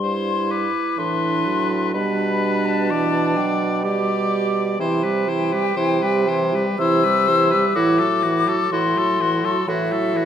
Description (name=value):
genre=classical, slow romantic movement for wind quintet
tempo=63 BPM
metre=3/4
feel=rubato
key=unclear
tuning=A4 = 443 Hz
part: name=hollow concert flute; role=melody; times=0.0-10.3 s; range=E5 to E6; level=-23 LUFS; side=left 7 dB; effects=none
part: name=bright oboe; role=second line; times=0.0-10.3 s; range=F#4 to D5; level=-26 LUFS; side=left 3 dB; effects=none
part: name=clear clarinet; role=accompaniment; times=0.0-10.3 s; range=D4 to G4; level=-25 LUFS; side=right 8 dB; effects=none
part: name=dark French horn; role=accompaniment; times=0.0-10.3 s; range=E3 to G3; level=-25 LUFS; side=equal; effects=none
part: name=warm bassoon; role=bass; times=0.0-10.3 s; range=G2 to C3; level=-24 LUFS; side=right 2 dB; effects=none
room=wet recital hall reverb, RT60 1.4 s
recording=none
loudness=-17 LUFS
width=side -9 dB against mid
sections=0.0-10.3 A section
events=none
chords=0.0 G; 1.9 G/B; 4.8 Cmaj7; 7.8 F#m7b5/A